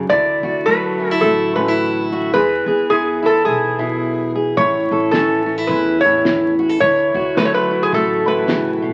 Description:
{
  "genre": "acoustic folk duo or small band",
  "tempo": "107 BPM",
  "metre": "4/4",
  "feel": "swing 60% on 8ths",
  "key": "unclear",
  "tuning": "A4 = 439 Hz",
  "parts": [
    { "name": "fingerpicked steel-string acoustic guitar", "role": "accompaniment", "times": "0.0-8.9 s", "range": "A2 to A4", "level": "-21 LUFS", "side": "equal", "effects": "none" },
    { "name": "upright bass", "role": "bass", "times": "0.0-8.9 s", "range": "A1 to E2", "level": "-33 LUFS", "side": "equal", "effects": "none" },
    { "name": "metal-body resonator slide guitar", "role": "second line", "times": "0.1-8.8 s", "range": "G#4 to D5", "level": "-19 LUFS", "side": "equal", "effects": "none" },
    { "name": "cloth-damped thuddy drum kit", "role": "drums", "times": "4.6-8.6 s", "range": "kick drum, snare drum", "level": "-25 LUFS", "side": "equal", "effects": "none" }
  ],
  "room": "moderate large studio reverb, RT60 1.1 s",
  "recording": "very old 78 rpm record, vinyl crackle",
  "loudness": "-17 LUFS",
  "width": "mono",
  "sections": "0.0-8.9 A section",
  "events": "resonator guitar played with a steel bar solo 0.0-8.9",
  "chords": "0.1 Dadd9; 2.3 E; 4.6 A; 6.8 Dadd9"
}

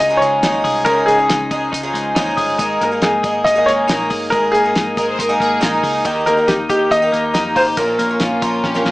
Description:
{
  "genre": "jangly indie pop",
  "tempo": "139 BPM",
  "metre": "4/4",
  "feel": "straight",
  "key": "unclear",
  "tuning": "A4 = 440 Hz",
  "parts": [
    { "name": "warm upright piano", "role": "melody", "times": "0.0-8.9 s", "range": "G4 to Eb5", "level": "-16 LUFS", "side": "equal", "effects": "none" },
    { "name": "picked twelve-string acoustic guitar", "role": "accompaniment", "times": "0.0-8.9 s", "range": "Bb2 to Ab4", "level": "-19 LUFS", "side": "right 1 dB", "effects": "none" },
    { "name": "twelve-string electric guitar", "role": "arpeggios", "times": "0.0-8.9 s", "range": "Bb2 to Ab4", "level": "-21 LUFS", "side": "left 2 dB", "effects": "none" },
    { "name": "vintage muted picked electric bass", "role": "bass", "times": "0.0-8.9 s", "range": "G1 to F2", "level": "-32 LUFS", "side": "equal", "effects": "none" },
    { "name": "cloth-damped thuddy drum kit", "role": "drums", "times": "0.0-8.9 s", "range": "hi-hat, kick drum, snare drum", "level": "-22 LUFS", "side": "equal", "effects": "none" },
    { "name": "rich studio violin section", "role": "second line", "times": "5.0-8.9 s", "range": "Eb4 to C5", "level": "-24 LUFS", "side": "equal", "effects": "none" }
  ],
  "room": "moderate studio reverb, RT60 0.5 s",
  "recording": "small speaker sound",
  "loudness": "-14 LUFS",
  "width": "side -19 dB against mid",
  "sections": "0.0-8.9 A section",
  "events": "drum fill 8.6",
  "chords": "0.0 Dbadd9; 2.6 Absus2; 6.0 Eb; 7.8 Bbm"
}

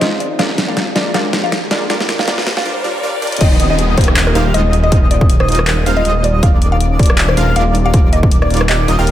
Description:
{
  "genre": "future bass",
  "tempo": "159 BPM",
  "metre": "4/4",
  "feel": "swing 55% on 16ths, half-time",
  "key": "Eb major",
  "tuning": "A4 = 440 Hz",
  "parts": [
    { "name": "mallet-like synth pluck", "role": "melody", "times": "0.0-9.1 s", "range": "Bb4 to G5", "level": "-21 LUFS", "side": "left 1 dB", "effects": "chorus, phaser, sidechain pumping, digital delay" },
    { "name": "dark grand piano", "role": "accompaniment", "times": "0.0-2.6 s", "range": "Ab3 to D5", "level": "-27 LUFS", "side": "right 3 dB", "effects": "none" },
    { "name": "ethereal airy pad", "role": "sustained chords", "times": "0.0-2.6 s", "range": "Eb3 to F4", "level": "-29 LUFS", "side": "left 2 dB", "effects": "ensemble chorus, built-in reverb, phaser, sidechain pumping" },
    { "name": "supersaw stab", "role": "riff", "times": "0.0-9.1 s", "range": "G3 to F5", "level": "-21 LUFS", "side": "right 1 dB", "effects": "sidechain pumping, low-pass filter" },
    { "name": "wide detuned saw bass", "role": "bass", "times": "0.0-9.1 s", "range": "Eb1 to Eb2", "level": "-16 LUFS", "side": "equal", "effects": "chorus, sidechain pumping, high-pass filter" },
    { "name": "dubstep drum kit", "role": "drums", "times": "0.0-9.1 s", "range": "crash cymbal, handclaps, hi-hat, rim click, snare drum", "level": "-19 LUFS", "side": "equal", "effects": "none" },
    { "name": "riser and downlifter", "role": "sound effects", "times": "0.0-6.4 s", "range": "none", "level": "-24 LUFS", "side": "equal", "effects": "none" },
    { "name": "airy dreamy lead", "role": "arpeggios", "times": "3.4-9.1 s", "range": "D6 to F6", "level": "-23 LUFS", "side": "equal", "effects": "chorus, sidechain pumping, tape echo" },
    { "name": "electronic kick drum", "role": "drums", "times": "3.4-8.3 s", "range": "none", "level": "-11 LUFS", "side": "equal", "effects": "none" }
  ],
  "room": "light reverb",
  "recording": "high-pass filter",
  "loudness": "-11 LUFS",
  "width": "side -12 dB against mid",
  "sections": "0.0-3.4 A section; 3.4-9.1 B section",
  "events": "build-up 0.0-3.4; drum fill 0.0-2.7, 3.2; riser 0.0-3.4; filter sweep on supersaw synth 0.0-3.4; drop 3.4-9.1",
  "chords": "0.4 Bb7/Eb; 1.9 Ebmaj9; 3.4 Cm7/Eb; 4.7 Fm7/Eb; 6.4 Bb7/Eb; 7.9 Ebmaj9"
}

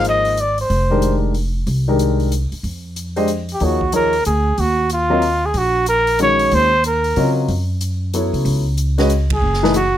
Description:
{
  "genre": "modal jazz",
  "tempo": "186 BPM",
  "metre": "3/4",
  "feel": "swing 63% on 8ths",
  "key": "F dorian, Eb dorian from 3.6 s",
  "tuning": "A4 = 439 Hz",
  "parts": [
    { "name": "breathy trumpet", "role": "melody", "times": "0.0-1.2, 3.5-10.0 s", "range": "F4 to Eb5", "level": "-16 LUFS", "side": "right 1 dB", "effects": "none" },
    { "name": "warm grand piano", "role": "accompaniment", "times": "0.0-9.7 s", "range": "Eb3 to Eb5", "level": "-19 LUFS", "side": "left 2 dB", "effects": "none" },
    { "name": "upright bass", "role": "bass", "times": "0.0-10.0 s", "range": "F1 to Db3", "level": "-19 LUFS", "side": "equal", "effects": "none" },
    { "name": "swinging big-band drum kit", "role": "drums", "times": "0.0-9.8 s", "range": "hi-hat, kick drum, ride cymbal, snare drum", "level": "-30 LUFS", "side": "equal", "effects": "none" }
  ],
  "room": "light reverb",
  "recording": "none",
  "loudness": "-15 LUFS",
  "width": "side -11 dB against mid",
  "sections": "0.0-3.6 A section; 3.6-10.0 B section",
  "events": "band accent 9.3",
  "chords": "0.0 Fm9; 3.6 Ebm9; 7.5 Gbm7"
}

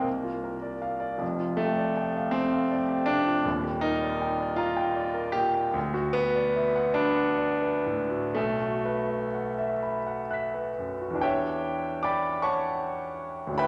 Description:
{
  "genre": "classical, impressionist solo piano",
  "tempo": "40-54 BPM (dotted quarters)",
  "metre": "6/8",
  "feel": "rubato",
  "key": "E dorian from 5.8 s",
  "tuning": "A4 = 440 Hz",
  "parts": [
    { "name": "clear concert grand piano", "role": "solo", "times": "0.0-13.7 s", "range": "Eb1 to B6", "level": "-28 LUFS", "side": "equal", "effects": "none" }
  ],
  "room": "wet recital hall reverb, RT60 1.7 s",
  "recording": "none",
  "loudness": "-28 LUFS",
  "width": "mono",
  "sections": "0.0-11.2 A section; 11.2-13.7 B section",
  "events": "none",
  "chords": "0.1 Bbadd9/C; 1.2 F69; 3.5 Ebmaj7; 5.8 D69; 8.4 B7sus4; 11.2 Em7"
}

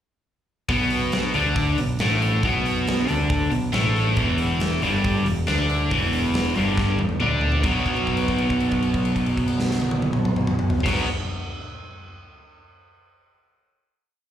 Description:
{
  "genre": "blues rock power trio and southern rock",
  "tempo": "138 BPM",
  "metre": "4/4",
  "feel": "straight",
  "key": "B minor",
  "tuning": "A4 = 440 Hz",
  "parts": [
    { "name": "crunchy overdriven guitar", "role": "riff", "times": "0.7-11.1 s", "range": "E2 to D4", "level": "-22 LUFS", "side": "equal", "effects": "spring reverb" },
    { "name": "growling picked electric bass", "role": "bass", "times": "0.7-11.0 s", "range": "E1 to D2", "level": "-25 LUFS", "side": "equal", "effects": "overdrive" },
    { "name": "big rock drum kit", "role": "drums", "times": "0.7-11.0 s", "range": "crash cymbal, hi-hat, kick drum, snare drum, toms", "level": "-26 LUFS", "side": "equal", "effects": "none" }
  ],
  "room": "light reverb",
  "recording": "live gig heard through the venue's PA, club reverb",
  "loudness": "-19 LUFS",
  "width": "side -10 dB against mid",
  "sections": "0.7-7.7 riff; 7.7-11.1 final chord",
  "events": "drum fill 6.8-7.7; held note 7.7-10.9",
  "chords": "0.7 Bm; 4.2 Em7; 7.7 B5"
}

